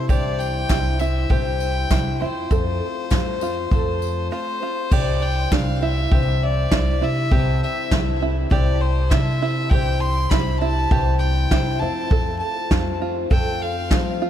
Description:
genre	indie folk with a building arrangement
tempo	100 BPM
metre	4/4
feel	straight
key	C major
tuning	A4 = 439 Hz
part	rich fiddle	melody	0.0-14.2 s	C5 to C6	-27 LUFS	equal	diffuse ambient delay
part	picked twelve-string acoustic guitar	accompaniment	0.0-14.3 s	C3 to C5	-28 LUFS	left 10 dB	wide subtle chorus
part	open-back banjo	arpeggios	0.0-14.3 s	D4 to A4	-28 LUFS	right 6 dB	none
part	upright bass	bass	0.0-14.3 s	C2 to F3	-23 LUFS	equal	none
part	vintage brush drum kit	drums	0.1-14.1 s	crash cymbal, kick drum, snare drum	-21 LUFS	equal	none
part	tambourine	percussion	0.1-4.2 s	none	-43 LUFS	left 16 dB	none
part	group handclap	percussion	0.7-14.1 s	none	-39 LUFS	left 7 dB	none
room	light reverb, small room reverb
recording	none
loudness	-18 LUFS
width	side -10 dB against mid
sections	0.0-4.9 A section; 4.9-14.3 A section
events	break 4.3-4.9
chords	0.1 Cadd9; 2.2 F; 4.9 Cadd9; 7.3 Am7/C; 9.7 Cadd9; 11.8 F

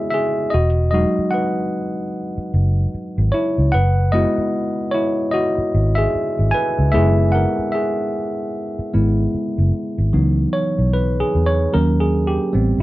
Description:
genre	R&B, neo-soul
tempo	75 BPM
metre	4/4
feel	swing 59% on 16ths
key	unclear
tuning	A4 = 440 Hz
part	tine electric piano	accompaniment	0.0-12.8 s	E3 to G#5	-19 LUFS	equal	none
part	vintage muted fingered electric bass	bass	0.5-12.8 s	E1 to E2	-17 LUFS	equal	none
room	little or no reverb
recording	none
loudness	-16 LUFS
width	side -17 dB against mid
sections	0.0-10.1 A section; 10.1-12.8 B section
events	tine electric piano solo 0.0-10.1, 10.1-12.8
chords	0.0 F#9sus4; 0.5 Emaj9; 3.7 F#9sus4; 10.1 C#m11; 11.7 D#m7

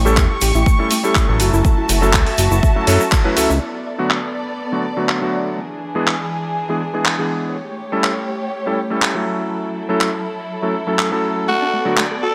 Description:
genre	nu-disco, nu disco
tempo	122 BPM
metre	4/4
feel	straight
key	B minor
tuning	A4 = 442 Hz
part	warm electric grand piano	accompaniment	0.0-12.0 s	D3 to B4	-23 LUFS	equal	sidechain pumping, delay
part	dark studio string section	sustained chords	0.0-12.3 s	E3 to C#6	-26 LUFS	equal	sidechain pumping
part	fat analog bass	bass	0.0-3.6 s	F#1 to F#2	-19 LUFS	equal	none
part	soft round pluck	arpeggios	0.1-3.6, 11.5-12.3 s	A3 to E5	-27 LUFS	equal	chorus, sidechain pumping, digital delay
part	egg shaker	percussion	0.1-3.6 s	none	-30 LUFS	equal	none
part	electronic kick drum	drums	0.2-3.2 s	none	-18 LUFS	equal	none
part	house drum kit	drums	0.2-12.1 s	handclaps, hi-hat	-23 LUFS	equal	low-pass filter on hats, low-pass filter on snare, low-pass filter on room
part	growling tenor saxophone	melody	11.5-12.3 s	F#4 to A4	-21 LUFS	equal	none
room	light reverb, digital ambience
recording	none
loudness	-18 LUFS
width	mono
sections	0.0-3.6 A section; 3.6-12.3 B section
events	band accent 3.1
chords	0.0 A7; 1.4 F#m7; 3.6 Bm7; 5.6 E7; 7.6 A7; 9.3 F#m7; 11.5 Bm7

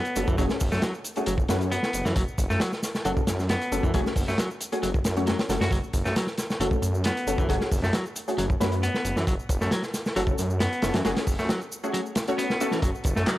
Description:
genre	breakbeat, breaks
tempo	135 BPM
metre	4/4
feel	straight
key	F# minor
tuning	A4 = 441 Hz
part	clean electric guitar	riff	0.0-13.4 s	E3 to F#4	-30 LUFS	equal	tape echo
part	orchestra-hit-like synth stab	stabs	0.0-12.7 s	A3 to C#5	-30 LUFS	left 1 dB	built-in reverb, tape echo
part	crunchy breakbeat drum kit	drums	0.0-13.4 s	hi-hat, kick drum, snare drum	-27 LUFS	equal	none
part	electronic shaker and handclaps	drums	0.1-13.4 s	none	-38 LUFS	right 1 dB	none
part	detuned saw bass	bass	0.2-13.2 s	F#1 to F#2	-28 LUFS	equal	none
part	deep dark ambient pad	sustained chords	13.4 s	none	barely audible	none	none
room	small room reverb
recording	dry, gritty hardware recording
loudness	-23 LUFS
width	side -15 dB against mid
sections	0.0-13.4 A section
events	filter sweep on synth stab 0.0-13.4; kick drops out 11.9-12.8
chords	0.0 F#m

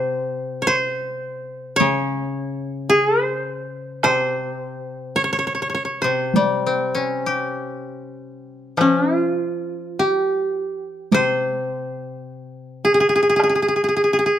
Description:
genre	japanese traditional, Japanese chamber music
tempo	48-55 BPM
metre	4/4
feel	rubato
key	C miyako bushi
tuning	A4 = 436 Hz
part	koto	melody	0.0-14.4 s	F4 to Db5	-19 LUFS	equal	none
part	koto	accompaniment	0.0-14.4 s	C3 to G4	-25 LUFS	left 3 dB	none
part	taiko ensemble	percussion	1.8-13.6 s	none	-21 LUFS	right 2 dB	none
room	light reverb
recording	close, detailed microphones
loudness	-18 LUFS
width	side -10 dB against mid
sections	0.0-8.8 A section; 8.8-14.4 B section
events	none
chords	none

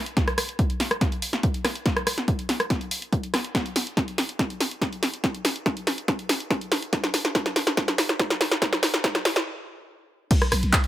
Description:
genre	driving peak-time techno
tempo	142 BPM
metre	4/4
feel	straight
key	unclear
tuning	A4 = 437 Hz
part	punchy analog drum machine	drums	0.1-10.9 s	crash cymbal, handclaps, hi-hat, rim click, snare drum	-24 LUFS	equal	none
part	electronic kick drum	drums	0.2-10.8 s	none	-25 LUFS	equal	none
part	street-band drum kit	drums	10.3-10.8 s	hi-hat, snare drum	-38 LUFS	equal	none
part	growling 808-style bass	bass	10.5-10.7 s	B1	-23 LUFS	equal	overdrive, sidechain pumping, low-pass filter
room	light reverb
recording	high-pass filter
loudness	-22 LUFS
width	side -14 dB against mid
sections	0.0-10.3 A section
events	build-up 0.0-10.3; drum fill 0.0-9.5; stop 9.5-10.3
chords	none

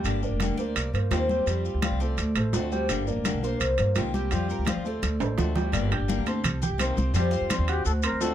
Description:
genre	latin, Cuban son and guajira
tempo	169 BPM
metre	4/4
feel	straight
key	G minor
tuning	A4 = 440 Hz
part	picked steel-string acoustic guitar	accompaniment	0.0-8.3 s	C3 to G4	-32 LUFS	left 7 dB	none
part	dark grand piano	arpeggios	0.0-8.3 s	G3 to G6	-32 LUFS	right 2 dB	none
part	upright bass	bass	0.0-8.3 s	F1 to G2	-27 LUFS	equal	none
part	maracas	percussion	0.0-8.3 s	none	-39 LUFS	left 10 dB	none
part	congas	percussion	0.1-8.3 s	none	-32 LUFS	left 1 dB	none
part	timbales	percussion	0.1-8.3 s	none	-32 LUFS	right 7 dB	none
part	Cuban tres	melody	0.6-8.3 s	G4 to D5	-33 LUFS	left 1 dB	none
part	mellow silver concert flute	second line	7.7-8.3 s	G4 to Bb4	-30 LUFS	left 3 dB	none
room	little or no reverb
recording	close, detailed microphones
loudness	-24 LUFS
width	side -11 dB against mid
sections	0.0-5.7 A section; 5.7-8.3 B section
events	drum fill 5.0-5.7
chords	0.1 Gm; 0.8 Cm7; 1.5 Fadd9; 2.2 D7; 2.9 Gm; 3.6 Cm7; 4.3 Fadd9; 5.0 D7; 5.7 Gm; 6.4 Cm7; 7.2 Fsus2

